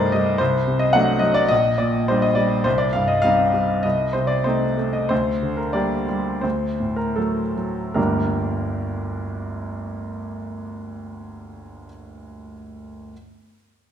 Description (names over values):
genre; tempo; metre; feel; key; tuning
classical, romantic character piece for solo piano; 72-113 BPM; 4/4; rubato; G minor; A4 = 440 Hz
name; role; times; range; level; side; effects
clear baby grand piano; solo; 0.0-13.1 s; G1 to F#5; -20 LUFS; equal; none
room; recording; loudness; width
wet recital hall reverb, RT60 1.5 s; minimal, uncompressed stereo recording; -19 LUFS; side -9 dB against mid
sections
0.0-8.0 A section; 8.0-11.0 B section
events
slowing down 1.5-8.0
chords
0.4 D7/C; 1.5 Gm/Bb; 2.7 Cm; 3.8 Adim/C; 5.1 Gm/D; 6.4 D; 8.0 Gm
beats
| 0.40 0.95 1.51 2.09 | 2.66 3.24 3.84 4.46 | 5.11 5.75 6.44 7.17 | 7.97 8.73 9.49 10.24